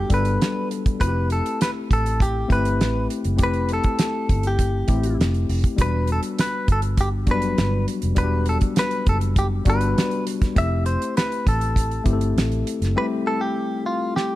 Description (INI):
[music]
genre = lush 1970s-style soul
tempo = 100 BPM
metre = 4/4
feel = straight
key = unclear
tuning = A4 = 440 Hz
[part]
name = direct-recorded clean electric guitar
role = melody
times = 0.0-14.4 s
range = F4 to E5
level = -26 LUFS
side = equal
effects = none
[part]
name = mellow tine electric piano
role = accompaniment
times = 0.0-14.4 s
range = F#3 to A4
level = -26 LUFS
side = left 4 dB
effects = overdrive
[part]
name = vintage muted fingered electric bass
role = bass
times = 0.0-12.9 s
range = E1 to A1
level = -23 LUFS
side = equal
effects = none
[part]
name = damped 70s drum kit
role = drums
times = 0.1-14.3 s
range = hi-hat, kick drum, snare drum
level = -21 LUFS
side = right 1 dB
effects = none
[sound]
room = small room ambience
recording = dark, warm production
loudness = -19 LUFS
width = side -16 dB against mid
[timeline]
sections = 0.0-14.4 A section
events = drum fill 14.1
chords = 0.0 Em9 (rootless); 1.0 Fmaj9; 5.8 Em9; 10.6 Fmaj9 (rootless)